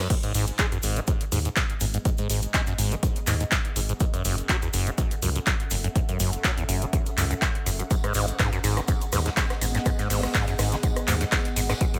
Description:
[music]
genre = acid house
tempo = 123 BPM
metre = 4/4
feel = swing 54% on 16ths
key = G# phrygian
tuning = A4 = 439 Hz
[part]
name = liquid acid bass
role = riff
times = 0.0-12.0 s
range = E2 to G#3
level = -31 LUFS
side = equal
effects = phaser, overdrive, sidechain pumping, digital delay
[part]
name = booming analog drum machine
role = drums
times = 0.1-12.0 s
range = crash cymbal, handclaps, hi-hat, rim click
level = -31 LUFS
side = equal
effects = none
[part]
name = electronic kick drum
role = drums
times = 0.1-11.9 s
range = none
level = -28 LUFS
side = equal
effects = none
[part]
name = cabasa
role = percussion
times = 0.1-12.0 s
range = none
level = -40 LUFS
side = equal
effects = none
[part]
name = ethereal airy pad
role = texture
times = 1.8-12.0 s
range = B3 to F#5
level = -40 LUFS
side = equal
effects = ensemble chorus, built-in reverb, sidechain pumping
[part]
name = round analog bass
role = bass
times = 0.3-11.7 s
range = F#1 to D#2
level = -30 LUFS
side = equal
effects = sidechain pumping
[part]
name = tight funk drum kit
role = drums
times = 7.9-11.9 s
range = hi-hat, snare drum, tambourine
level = -40 LUFS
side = equal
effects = high-pass filter on hats, high-pass filter on snare, high-pass filter on perc, high-pass filter on room
[sound]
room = light reverb, studio ambience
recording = none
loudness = -25 LUFS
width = mono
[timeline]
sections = 0.1-12.0 A section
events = fade-in on ambient pad 0.1-12.0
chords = 0.1 G#m7; 4.0 F#m7; 7.9 G#m7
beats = | 0.10 0.59 1.08 1.56 | 2.05 2.54 3.03 3.52 | 4.00 4.49 4.98 5.47 | 5.96 6.44 6.93 7.42 | 7.91 8.39 8.88 9.37 | 9.86 10.35 10.83 11.32 | 11.81

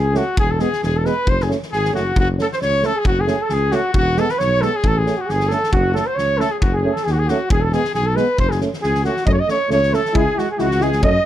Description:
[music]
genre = balkan folk, Balkan brass band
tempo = 135 BPM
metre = 2/4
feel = swing 55% on 16ths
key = F# minor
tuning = A4 = 440 Hz
[part]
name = mellow flugelhorn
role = melody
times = 0.0-11.3 s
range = F#4 to D#5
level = -21 LUFS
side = right 2 dB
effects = plate reverb
[part]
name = bright trumpet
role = second line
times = 0.0-11.3 s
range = F#4 to D#5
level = -24 LUFS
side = left 5 dB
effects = none
[part]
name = dark tuba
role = bass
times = 0.0-11.2 s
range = E1 to F#2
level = -21 LUFS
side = left 1 dB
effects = none
[part]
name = dark trombone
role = accompaniment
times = 0.1-11.1 s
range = B3 to E4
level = -26 LUFS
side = left 1 dB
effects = none
[part]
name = warm euphonium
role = accompaniment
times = 0.1-11.1 s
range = G#3 to A3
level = -25 LUFS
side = right 6 dB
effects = none
[part]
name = loose indie drum kit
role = percussion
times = 0.1-11.1 s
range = kick drum, snare drum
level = -23 LUFS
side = equal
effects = none
[sound]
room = light reverb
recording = none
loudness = -16 LUFS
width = side -12 dB against mid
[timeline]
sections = 0.0-2.2 A section; 2.2-9.3 A section; 9.3-11.3 B section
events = none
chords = 0.4 E; 1.3 F#m; 3.9 E; 4.8 A; 5.7 F#m; 7.5 E; 8.4 F#m; 10.2 C#m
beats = | 0.38 0.82 | 1.27 1.71 | 2.16 2.60 | 3.05 3.49 | 3.94 4.38 | 4.83 5.27 | 5.72 6.16 | 6.61 7.05 | 7.49 7.94 | 8.38 8.82 | 9.27 9.71 | 10.15 10.59 | 11.04

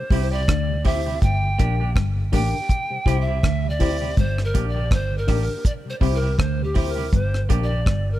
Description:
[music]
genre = roots reggae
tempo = 81 BPM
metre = 4/4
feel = swing 56% on 16ths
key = G dorian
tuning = A4 = 440 Hz
[part]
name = bright polished pan flute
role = melody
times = 0.0-8.2 s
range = G4 to G5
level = -28 LUFS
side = right 1 dB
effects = dub echo
[part]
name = mellow tonewheel organ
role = accompaniment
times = 0.0-8.2 s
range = G2 to G4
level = -35 LUFS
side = left 3 dB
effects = chorus vibrato, slow rotary speaker, dub echo
[part]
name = clean electric guitar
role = accompaniment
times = 0.1-7.8 s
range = Bb3 to G4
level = -33 LUFS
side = right 6 dB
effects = dub echo
[part]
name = mellow electric guitar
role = riff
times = 0.1-8.1 s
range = G2 to D3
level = -30 LUFS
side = left 4 dB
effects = none
[part]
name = mellow reed electric piano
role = stabs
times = 0.1-7.7 s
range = D4 to C5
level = -32 LUFS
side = left 7 dB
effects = fast tremolo
[part]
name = vintage muted fingered electric bass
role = bass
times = 0.1-8.2 s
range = G1 to D2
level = -23 LUFS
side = equal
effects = none
[part]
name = deep reggae drum kit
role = drums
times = 0.1-8.1 s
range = hi-hat, kick drum, rim click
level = -21 LUFS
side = equal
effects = none
[sound]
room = little or no reverb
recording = none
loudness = -19 LUFS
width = side -14 dB against mid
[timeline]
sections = 0.0-8.2 A section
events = pan flute solo 0.0-8.2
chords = 0.0 C; 1.2 Gm; 2.7 C; 4.2 Gm; 5.7 C; 7.1 Gm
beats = 0.48 | 1.22 1.96 2.70 3.44 | 4.17 4.91 5.65 6.39 | 7.13 7.87

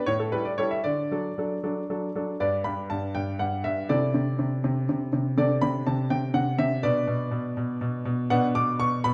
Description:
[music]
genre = classical-period piano sonatina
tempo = 81 BPM (dotted quarters)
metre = 6/8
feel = rubato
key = G major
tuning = A4 = 440 Hz
[part]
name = clear baby grand piano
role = solo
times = 0.0-9.1 s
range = G2 to D6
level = -26 LUFS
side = equal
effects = none
[sound]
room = wet recital hall reverb, RT60 1.3 s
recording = dark, warm production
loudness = -26 LUFS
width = mono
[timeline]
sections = 0.0-2.4 A section; 2.4-9.1 B section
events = none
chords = 0.1 A5; 0.8 D; 2.4 G; 3.9 Am/C; 5.4 D5/C; 6.8 Bm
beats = 0.06 | 0.84 1.63 | 2.41 3.16 | 3.90 4.64 | 5.38 6.11 | 6.84 7.58 | 8.31 9.05

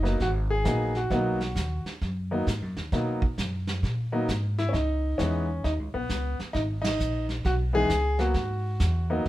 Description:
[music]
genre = jazz piano trio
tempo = 132 BPM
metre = 4/4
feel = swing 65% on 8ths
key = G# minor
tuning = A4 = 440 Hz
[part]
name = clear baby grand piano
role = melody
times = 0.0-9.2 s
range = E3 to G#4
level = -28 LUFS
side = left 1 dB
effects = none
[part]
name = upright bass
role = bass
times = 0.0-9.3 s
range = F#1 to B2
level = -28 LUFS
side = equal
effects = none
[part]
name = vintage brush drum kit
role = drums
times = 0.1-9.3 s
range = brushed snare drum, hi-hat, kick drum, ride cymbal, snare drum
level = -33 LUFS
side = right 1 dB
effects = none
[sound]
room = light reverb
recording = minimal, uncompressed stereo recording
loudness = -25 LUFS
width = side -15 dB against mid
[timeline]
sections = 0.0-9.3 A section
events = band accent 6.8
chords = 0.0 G#m9; 4.7 C#m9; 8.4 G#7(no3)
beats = 0.20 0.65 | 1.11 1.56 2.02 2.47 | 2.92 3.38 3.83 4.29 | 4.74 5.19 5.64 6.10 | 6.55 7.00 7.45 7.91 | 8.36 8.81 9.26

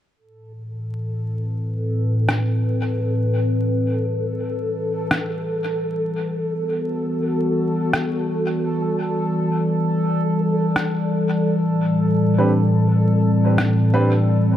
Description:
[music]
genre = ambient dub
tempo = 85 BPM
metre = 4/4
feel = swing 60% on 16ths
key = unclear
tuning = A4 = 441 Hz
[part]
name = warbly tape-like pad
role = sustained chords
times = 0.6-14.6 s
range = A2 to D5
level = -19 LUFS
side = left 1 dB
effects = chorus, built-in reverb
[part]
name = bubbling stepped-filter texture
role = texture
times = 1.1-14.6 s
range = A4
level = -27 LUFS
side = right 1 dB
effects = chorus, built-in reverb
[part]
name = electronic rim click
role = drums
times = 2.3-13.8 s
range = none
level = -24 LUFS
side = equal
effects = dub echo
[part]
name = dark upright piano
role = stabs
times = 12.4-14.1 s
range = C4 to B4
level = -22 LUFS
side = right 1 dB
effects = vintage 12-bit sampler grit, dub echo
[sound]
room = light reverb, digital ambience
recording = dark, warm production, vinyl crackle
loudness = -18 LUFS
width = side -11 dB against mid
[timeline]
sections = 0.2-14.6 A section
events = filter sweep on ambient pad 0.2-14.6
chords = 0.2 Am11; 5.8 Em9; 11.5 Am11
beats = | 0.17 0.88 1.58 2.29 | 2.99 3.70 4.41 5.11 | 5.82 6.52 7.23 7.93 | 8.64 9.35 10.05 10.76 | 11.46 12.17 12.88 13.58 | 14.29

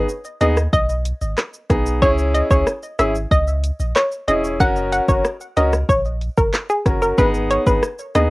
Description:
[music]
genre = dancehall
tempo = 93 BPM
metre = 4/4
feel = straight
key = G# minor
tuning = A4 = 439 Hz
[part]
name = hollow square pluck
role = melody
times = 0.0-8.3 s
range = G#4 to F#5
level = -20 LUFS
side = equal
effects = chorus, cassette tape, analog delay
[part]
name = clear baby grand piano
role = accompaniment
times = 0.0-8.3 s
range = B3 to A#4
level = -21 LUFS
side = left 1 dB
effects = none
[part]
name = punchy sub bass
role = bass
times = 0.0-8.3 s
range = E1 to D#2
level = -22 LUFS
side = equal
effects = none
[part]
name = afro-pop drum kit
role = drums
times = 0.1-8.3 s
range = handclaps, hi-hat, kick drum, rim click, shaker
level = -20 LUFS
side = equal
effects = overdrive
[sound]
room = light reverb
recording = home recording on cassette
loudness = -16 LUFS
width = side -22 dB against mid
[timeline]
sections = 0.0-8.3 A section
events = none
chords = 0.0 G#m; 2.0 C#m; 4.6 F#; 7.2 G#m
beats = 0.09 0.73 1.38 | 2.02 2.67 3.31 3.96 | 4.60 5.25 5.89 6.54 | 7.18 7.83

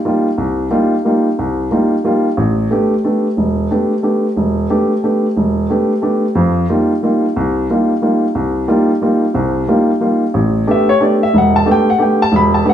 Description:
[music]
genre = jazz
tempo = 181 BPM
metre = 3/4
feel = swing 63% on 8ths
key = unclear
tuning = A4 = 439 Hz
[part]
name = warm upright piano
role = solo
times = 0.1-12.7 s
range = E1 to B5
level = -12 LUFS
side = equal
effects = none
[sound]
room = wet large studio reverb, RT60 0.9 s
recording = band playing live in one room, nothing above 11.0 kHz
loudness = -12 LUFS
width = side -10 dB against mid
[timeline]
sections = 0.0-10.3 A section; 10.3-12.7 B section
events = none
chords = 0.0 F9sus4; 2.4 A9sus4; 6.4 F9sus4; 10.3 A9sus4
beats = 0.05 | 0.38 0.71 1.05 | 1.38 1.71 2.04 | 2.38 2.71 3.04 | 3.37 3.70 4.04 | 4.37 4.70 5.03 | 5.37 5.70 6.03 | 6.36 6.69 7.02 | 7.36 7.69 8.02 | 8.35 8.68 9.02 | 9.35 9.68 10.01 | 10.34 10.67 11.00 | 11.33 11.66 11.99 | 12.33 12.66

